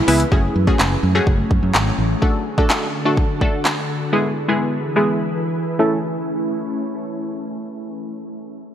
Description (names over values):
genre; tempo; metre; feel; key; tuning
dance-pop; 126 BPM; 4/4; straight; A major; A4 = 440 Hz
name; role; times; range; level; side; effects
ethereal airy pad; sustained chords; 0.0-7.9 s; D3 to B4; -24 LUFS; equal; ensemble chorus, built-in reverb, sidechain pumping, low-pass filter
punchy chord stab; accompaniment; 0.1-6.0 s; G#3 to E5; -20 LUFS; equal; chorus, sidechain pumping, low-pass filter
fingered electric bass; bass; 0.1-2.1 s; F#1 to F#2; -19 LUFS; equal; sidechain pumping
deep house drum kit; drums; 0.1-3.8 s; handclaps, hi-hat, kick drum, snare drum; -19 LUFS; equal; none
room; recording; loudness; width
light reverb, digital ambience; none; -17 LUFS; side -10 dB against mid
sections
0.3-7.9 A section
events
filter sweep 0.3-7.9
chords
0.3 F#madd9; 2.2 D; 4.1 E; 5.8 A